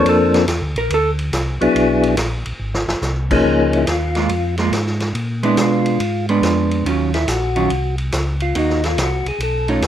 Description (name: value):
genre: soul jazz organ trio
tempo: 141 BPM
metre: 4/4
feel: swing 66% on 8ths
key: Db major from 3.5 s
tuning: A4 = 440 Hz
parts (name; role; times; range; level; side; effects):
- percussive tonewheel organ; melody; 0.0-9.8 s; E#3 to A4; -17 LUFS; left 3 dB; slow rotary speaker
- vintage hollow-body jazz guitar; accompaniment; 0.0-1.1, 4.2-9.8 s; Eb3 to A#4; -18 LUFS; right 4 dB; none
- mellow tonewheel organ; bass; 0.0-9.9 s; G#1 to Cb3; -21 LUFS; equal; chorus vibrato, slow rotary speaker
- vintage drum kit; drums; 0.1-9.9 s; crash cymbal, hi-hat, kick drum, ride cymbal, snare drum; -24 LUFS; equal; none
room: light reverb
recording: none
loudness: -15 LUFS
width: side -10 dB against mid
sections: 0.0-3.5 A section; 3.5-9.9 A section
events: hollow-body jazz guitar solo 0.0-3.5; drum fill 2.6-3.0; tonewheel organ solo 3.5-9.9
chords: 0.1 A#maj7; 1.8 E9; 2.6 G#; 3.5 Db6; 5.2 Bb7b9; 6.9 Ebm9; 8.6 Cm7b5